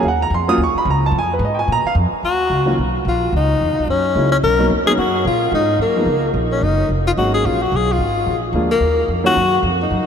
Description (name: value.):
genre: jazz, small-group swing and bop.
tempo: 219 BPM.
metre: 4/4.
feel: swing 59% on 8ths.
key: Eb minor.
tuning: A4 = 439 Hz.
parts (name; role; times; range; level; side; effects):
warm baby grand piano; accompaniment; 0.0-9.3 s; Eb3 to Eb6; -21 LUFS; right 2 dB; none.
upright bass; bass; 0.0-10.1 s; F1 to Bb2; -20 LUFS; equal; none.
breathy tenor saxophone; melody; 2.2-10.1 s; Bb3 to A#4; -17 LUFS; left 2 dB; tape echo.
room: wet huge ambient reverb, RT60 8.5 s.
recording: dreamy mix soaked in reverb.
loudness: -14 LUFS.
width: side -7 dB against mid.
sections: 0.0-2.2 A section; 2.2-10.1 B section.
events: none.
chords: 0.0 Ebm7; 1.1 Fm7b5; 1.7 Bb5; 2.2 Ebm7; 3.3 Dbm7; 3.9 Gb9; 4.4 Bmaj7; 5.5 Abm9; 6.1 Bbm; 6.6 Gb6; 7.7 Fdim; 8.3 Bb7; 8.8 Ebm.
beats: | 0.05 0.32 0.59 0.87 | 1.14 1.41 1.69 1.96 | 2.23 2.51 2.78 3.06 | 3.33 3.60 3.88 4.15 | 4.42 4.70 4.97 5.25 | 5.52 5.80 6.07 6.34 | 6.62 6.89 7.17 7.44 | 7.71 7.99 8.26 8.54 | 8.81 9.08 9.36 9.63 | 9.90.